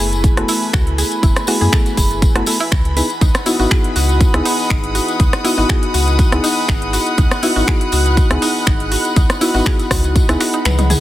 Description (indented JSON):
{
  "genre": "deep house",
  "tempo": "121 BPM",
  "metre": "4/4",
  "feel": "swing 54% on 16ths",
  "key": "unclear",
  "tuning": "A4 = 440 Hz",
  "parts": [
    { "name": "airy breathy pad", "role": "sustained chords", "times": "0.0-11.0 s", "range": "D#5 to B5", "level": "-26 LUFS", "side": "left 2 dB", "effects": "chorus, sidechain pumping" },
    { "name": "mallet-like synth pluck", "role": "arpeggios", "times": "0.0-11.0 s", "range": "D#4 to B4", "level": "-25 LUFS", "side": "right 2 dB", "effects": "chorus, sidechain pumping, tape echo" },
    { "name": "mellow FM electric piano", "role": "stabs", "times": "0.0-11.0 s", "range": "A3 to A4", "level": "-20 LUFS", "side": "left 1 dB", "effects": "chorus, sidechain pumping, tape echo" },
    { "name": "sub bass with octave", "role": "bass", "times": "0.0-10.9 s", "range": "F#1 to F#2", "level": "-18 LUFS", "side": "equal", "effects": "sidechain pumping" },
    { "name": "tambourine", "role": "percussion", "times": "0.0-11.0 s", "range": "none", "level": "-27 LUFS", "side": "left 3 dB", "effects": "none" },
    { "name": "rich chamber string section", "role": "texture", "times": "0.0-11.0 s", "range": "E3 to D#6", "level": "-24 LUFS", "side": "equal", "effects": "sidechain pumping" },
    { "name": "house drum kit", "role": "drums", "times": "0.1-11.0 s", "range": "finger snaps, hi-hat, rim click, toms", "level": "-21 LUFS", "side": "equal", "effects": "soft clipping on snare" },
    { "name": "electronic kick drum", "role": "drums", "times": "0.2-10.3 s", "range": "none", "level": "-15 LUFS", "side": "equal", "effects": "none" },
    { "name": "rich studio violin section", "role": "texture", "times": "3.2-11.0 s", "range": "F#6", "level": "-29 LUFS", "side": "right 3 dB", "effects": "sidechain pumping" }
  ],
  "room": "little or no reverb",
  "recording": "dense, heavily limited modern master",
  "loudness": "-13 LUFS",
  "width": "side -14 dB against mid",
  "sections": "0.0-11.0 A section",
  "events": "kick drops out 10.7-11.0; drum fill 10.7-11.0",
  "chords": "0.0 F#m11; 3.0 C#m11"
}